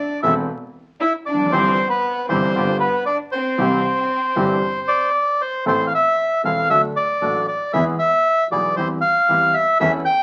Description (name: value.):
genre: tango.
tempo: 116 BPM.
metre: 4/4.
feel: rubato.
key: C major, A minor from 5.7 s.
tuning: A4 = 437 Hz.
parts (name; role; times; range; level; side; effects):
bandoneon; melody; 0.0-10.2 s; B4 to G5; -20 LUFS; equal; none.
warm chamber violin section; second line; 0.0-5.1 s; B3 to E4; -28 LUFS; equal; none.
warm concert grand piano; accompaniment; 0.2-10.0 s; E1 to A4; -26 LUFS; equal; none.
bandoneon; stabs; 0.2-10.0 s; B3 to A4; -31 LUFS; equal; none.
warm double bass; bass; 0.2-10.0 s; E1 to E2; -32 LUFS; equal; none.
room: wet club reverb, RT60 0.8 s.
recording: very old 78 rpm record, vinyl crackle.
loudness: -19 LUFS.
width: mono.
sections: 0.0-5.7 A section; 5.7-10.2 B section.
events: none.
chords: 0.0 Am; 1.5 C/G; 2.6 G7; 3.6 C; 5.7 Am; 6.7 D; 7.7 E; 8.8 C/E.